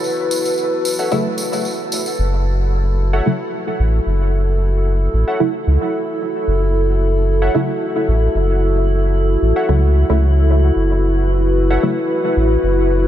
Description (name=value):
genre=dub techno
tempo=112 BPM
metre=4/4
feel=straight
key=F# minor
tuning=A4 = 440 Hz
part: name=dark analog pad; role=sustained chords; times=0.0-13.1 s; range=E4 to B4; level=-20 LUFS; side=equal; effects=chorus
part: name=tambourine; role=percussion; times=0.0-2.2 s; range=none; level=-26 LUFS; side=right 1 dB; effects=none
part: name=drifting glass-harmonics texture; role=texture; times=0.0-13.1 s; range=E4 to A4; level=-27 LUFS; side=left 4 dB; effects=chorus, built-in reverb
part: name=warbly lo-fi synth keys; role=riff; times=1.0-11.9 s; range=A4 to F#5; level=-28 LUFS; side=equal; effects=chorus, dub echo
part: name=filtered dub chord stab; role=stabs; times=1.1-12.0 s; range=C#3 to E4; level=-24 LUFS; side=right 1 dB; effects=chorus, phaser, dub echo
part: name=pure sine sub bass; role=bass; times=2.2-13.1 s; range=F#1 to C#2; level=-15 LUFS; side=equal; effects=none
room=light reverb, digital ambience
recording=none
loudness=-14 LUFS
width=side -11 dB against mid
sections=0.0-2.2 A section; 2.2-13.1 B section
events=none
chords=0.0 F#m7